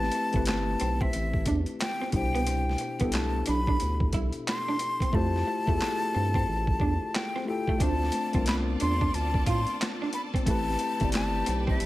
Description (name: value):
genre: R&B, neo-soul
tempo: 90 BPM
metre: 4/4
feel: swing 62% on 16ths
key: D dorian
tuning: A4 = 440 Hz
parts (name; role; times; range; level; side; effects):
- breathy jazz flute; melody; 0.0-11.9 s; E5 to C6; -31 LUFS; left 1 dB; plate reverb
- tine electric piano; accompaniment; 0.0-11.9 s; B2 to D5; -32 LUFS; left 3 dB; plate reverb
- round analog bass; bass; 0.0-11.9 s; G1 to A2; -29 LUFS; equal; none
- boom bap sampler-style drum kit; drums; 0.0-11.9 s; handclaps, hi-hat, kick drum, snare drum; -30 LUFS; equal; overdrive
- electric guitar through a small old amp; second line; 0.1-11.7 s; A3 to F4; -35 LUFS; right 3 dB; spring reverb
- clear studio string section; sustained chords; 7.8-11.9 s; F4 to A5; -39 LUFS; right 1 dB; plate reverb
room: light reverb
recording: none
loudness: -25 LUFS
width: side -16 dB against mid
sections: 0.0-11.9 A section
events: hi-hats muted 5.1-7.8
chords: 0.0 Am9; 2.1 Cmaj9; 5.1 Fmaj9; 7.8 Dm7; 10.5 Am9